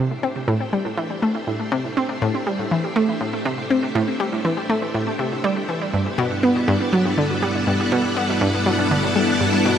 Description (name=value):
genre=ambient, sequencer-driven space music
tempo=121 BPM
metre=4/4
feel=straight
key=unclear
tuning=A4 = 440 Hz
part: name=string machine, full ensemble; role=sustained chords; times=0.0-9.8 s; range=G2 to F#5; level=-23 LUFS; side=equal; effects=ensemble chorus
part: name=analog pluck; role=riff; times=0.0-9.8 s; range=G2 to C4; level=-20 LUFS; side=equal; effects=chorus, tape echo
room=wet huge ambient reverb, RT60 8.0 s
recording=none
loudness=-19 LUFS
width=side -9 dB against mid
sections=0.0-9.8 A section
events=fade-in on string machine 0.0-9.8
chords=0.0 Am; 5.9 G